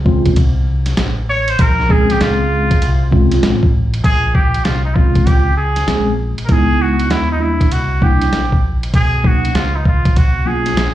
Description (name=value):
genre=hip hop, jazz-hop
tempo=98 BPM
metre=4/4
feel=swing 65% on 16ths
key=Bb dorian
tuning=A4 = 441 Hz
part: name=mellow tine electric piano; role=accompaniment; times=0.0-10.7 s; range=F#3 to Ab4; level=-18 LUFS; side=equal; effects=medium stereo tremolo, plate reverb, slapback echo
part: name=deep dub fingered electric bass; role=bass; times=0.0-10.9 s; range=A1 to Eb2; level=-17 LUFS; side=equal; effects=none
part: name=lo-fi sampler-style drum kit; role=drums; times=0.1-10.9 s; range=hi-hat, kick drum, ride cymbal, snare drum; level=-15 LUFS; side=equal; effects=none
part: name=trumpet with straight mute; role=melody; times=1.3-10.9 s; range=D#4 to Db5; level=-19 LUFS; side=right 1 dB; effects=plate reverb, slapback echo
room=light reverb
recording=live gig heard through the venue's PA, club reverb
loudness=-12 LUFS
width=side -13 dB against mid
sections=0.0-4.0 A section; 4.0-10.9 B section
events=muted trumpet solo 0.0-4.0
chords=0.0 Bbm9; 6.5 Dbm9; 7.7 C9; 8.9 Bmaj7sus2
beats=0.36 0.98 | 1.59 2.20 2.81 3.43 | 4.04 4.65 5.26 5.88 | 6.49 7.10 7.71 8.32 | 8.94 9.55 10.16 10.77